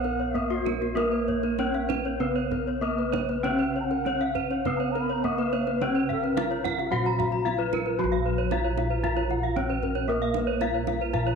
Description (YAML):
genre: Balinese gamelan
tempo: 97-114 BPM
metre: 4/4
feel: straight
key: Bb pelog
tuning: A4 = 443 Hz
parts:
  - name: gamelan-type bronze metallophone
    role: melody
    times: 0.0-11.4 s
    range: Gb3-40c to Gb4-40c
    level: -29 LUFS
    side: left 1 dB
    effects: none
  - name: bass bansuri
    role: second line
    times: 0.0-6.9 s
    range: Gb4-32c to Cb6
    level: -34 LUFS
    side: right 8 dB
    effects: none
  - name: gamelan-type bronze metallophone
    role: accompaniment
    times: 0.0-11.4 s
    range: C3+50c to Cb4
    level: -37 LUFS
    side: right 11 dB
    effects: none
  - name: gamelan-type bronze metallophone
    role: arpeggios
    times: 0.0-11.3 s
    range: Gb4-40c to Bb5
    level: -31 LUFS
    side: left 10 dB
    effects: none
  - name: gamelan-type bronze metallophone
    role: arpeggios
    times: 0.0-11.4 s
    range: Bb4 to Bb5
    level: -34 LUFS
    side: right 11 dB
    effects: none
  - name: gamelan-type bossed gongs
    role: bass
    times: 0.0-11.4 s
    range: Bb1 to Bb4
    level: -31 LUFS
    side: equal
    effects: none
  - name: kendang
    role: percussion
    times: 0.0-11.3 s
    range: none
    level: -37 LUFS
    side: right 10 dB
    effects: none
room: moderate echo chamber reverb, RT60 1.8 s, small room ambience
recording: 1960s-style stereo with parts hard left and right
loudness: -24 LUFS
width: side -6 dB against mid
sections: 0.0-8.0 A section; 8.0-11.4 B section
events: none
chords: none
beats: 0.35 | 0.97 1.58 2.20 2.82 | 3.44 4.05 4.65 5.24 | 5.81 6.37 6.92 7.46 | 7.99 8.52 9.04 9.56 | 10.09 10.61 11.14